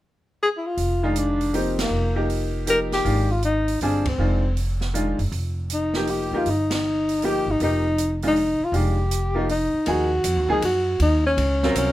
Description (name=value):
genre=modal jazz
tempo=158 BPM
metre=3/4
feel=swing 65% on 8ths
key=F dorian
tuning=A4 = 439 Hz
part: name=breathy tenor saxophone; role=melody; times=0.4-11.9 s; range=Bb3 to Bb4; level=-22 LUFS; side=left 1 dB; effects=plate reverb
part: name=upright bass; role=bass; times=0.8-11.9 s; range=F1 to Gb2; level=-25 LUFS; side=equal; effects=none
part: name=open jazz drum kit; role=drums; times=0.8-11.9 s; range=hi-hat, kick drum, ride cymbal, snare drum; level=-33 LUFS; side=right 3 dB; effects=none
part: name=bright upright piano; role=accompaniment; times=1.0-11.9 s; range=Eb3 to Bb4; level=-25 LUFS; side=equal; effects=none
room=light reverb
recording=none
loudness=-20 LUFS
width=side -15 dB against mid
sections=0.8-9.9 A section; 9.9-11.9 B section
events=band accent 1.7, 4.0, 6.7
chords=0.0 N.C.; 0.8 Fm11; 5.3 Eb/F; 9.9 Ebm9